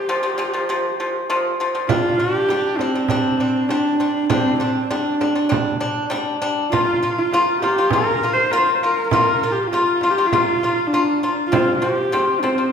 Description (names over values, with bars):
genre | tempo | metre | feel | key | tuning
mongolian traditional, Mongolian folk | 100 BPM | 4/4 | straight | G yu mode | A4 = 440 Hz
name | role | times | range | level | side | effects
warm horsehead fiddle | melody | 0.0-12.7 s | C4 to C5 | -20 LUFS | right 1 dB | none
pipa | arpeggios | 0.0-12.7 s | Bb2 to F4 | -20 LUFS | left 2 dB | none
frame drum | percussion | 1.9-12.6 s | none | -25 LUFS | right 5 dB | none
room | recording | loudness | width
wet recital hall reverb, RT60 1.6 s | recorded in a church or concert hall | -17 LUFS | side -7 dB against mid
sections
0.0-1.9 A section; 1.9-12.7 B section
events
none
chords
0.0 Bb5; 1.9 G5; 6.7 Bb5; 11.5 F5